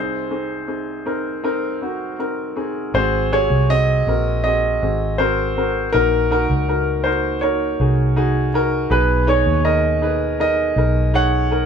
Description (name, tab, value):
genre	pop ballad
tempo	81 BPM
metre	4/4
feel	straight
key	unclear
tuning	A4 = 440 Hz
part	clear concert grand piano	melody	0.0-11.7 s	Bb4 to Gb5	-21 LUFS	right 2 dB	none
part	warm upright piano	accompaniment	0.0-11.7 s	C2 to Db5	-21 LUFS	left 1 dB	none
part	vintage muted fingered electric bass	bass	2.9-11.7 s	Ab1 to Eb2	-20 LUFS	equal	none
room	moderate studio reverb, RT60 0.7 s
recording	band playing live in one room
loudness	-16 LUFS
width	side -7 dB against mid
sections	0.0-3.0 A section; 3.0-11.7 B section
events	none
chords	0.0 Ab/C; 3.0 Ab7; 5.9 Gb6/Bb; 8.9 Cb6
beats	0.69 1.44 2.19 | 2.95 3.70 4.45 5.20 | 5.94 6.68 7.42 8.16 | 8.90 9.65 10.39 11.14